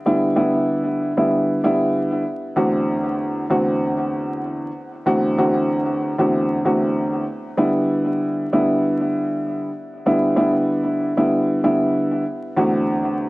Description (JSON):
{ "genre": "hip hop", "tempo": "96 BPM", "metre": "4/4", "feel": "swing 57% on 16ths", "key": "E minor", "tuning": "A4 = 441 Hz", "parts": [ { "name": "dark upright piano", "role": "solo", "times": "0.1-13.3 s", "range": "E2 to F#4", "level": "-18 LUFS", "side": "equal", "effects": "high-pass filter, low-pass filter, digital delay" } ], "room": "moderate small room reverb, RT60 0.5 s", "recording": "worn, warbling old tape, cassette tape, vinyl crackle, warbly pitch drift", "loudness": "-18 LUFS", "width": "side -20 dB against mid", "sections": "0.0-7.6 A section; 7.6-13.3 A section", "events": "none", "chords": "0.0 Em7; 2.6 D7/E; 7.6 Em7; 12.6 D7/E", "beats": "| 0.07 0.70 1.32 1.95 | 2.57 3.20 3.82 4.45 | 5.07 5.70 6.32 6.95 | 7.57 8.20 8.82 9.45 | 10.07 10.70 11.32 11.95 | 12.57 13.20" }